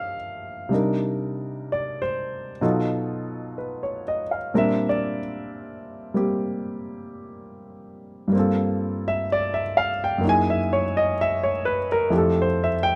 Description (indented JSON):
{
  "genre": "jazz ballad",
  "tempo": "63 BPM",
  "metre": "4/4",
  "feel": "swing 68% on 8ths",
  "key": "unclear",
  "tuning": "A4 = 439 Hz",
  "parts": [
    { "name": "warm concert grand piano", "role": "solo", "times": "0.0-13.0 s", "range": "F2 to Ab5", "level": "-25 LUFS", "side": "equal", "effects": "none" }
  ],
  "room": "light reverb",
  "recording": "close, detailed microphones",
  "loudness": "-24 LUFS",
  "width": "mono",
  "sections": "0.0-13.0 A section",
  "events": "none",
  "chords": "0.0 Gm11; 0.7 Cm9; 2.6 B7#11; 4.5 Bb69; 8.3 Gm11; 10.2 Gb13; 12.1 Fmaj9"
}